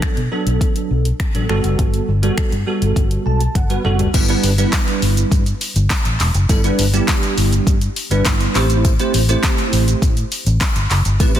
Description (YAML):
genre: dance-pop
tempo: 102 BPM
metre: 4/4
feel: straight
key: unclear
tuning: A4 = 440 Hz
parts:
  - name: bell-like tine electric piano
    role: accompaniment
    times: 0.0-11.4 s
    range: F#3 to A5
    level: -20 LUFS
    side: right 2 dB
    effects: ensemble chorus, sidechain pumping
  - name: vintage muted fingered electric bass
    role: bass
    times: 0.0-11.4 s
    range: E1 to B2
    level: -17 LUFS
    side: equal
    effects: sidechain pumping
  - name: deep house drum kit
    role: drums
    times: 0.0-11.4 s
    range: crash cymbal, finger snaps, handclaps, hi-hat, kick drum, shaker, snare drum, toms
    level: -18 LUFS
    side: equal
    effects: none
  - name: tambourine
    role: percussion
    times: 4.1-11.3 s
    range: none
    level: -34 LUFS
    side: left 12 dB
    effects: none
room: light reverb, digital ambience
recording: dense, heavily limited modern master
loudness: -14 LUFS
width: side -11 dB against mid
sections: 0.0-4.1 A section; 4.1-11.4 B section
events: tine electric piano fill 3.0-4.1; drum fill 3.6-4.1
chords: 0.0 Bm7; 1.5 Gmaj9; 4.1 G6; 8.6 Am7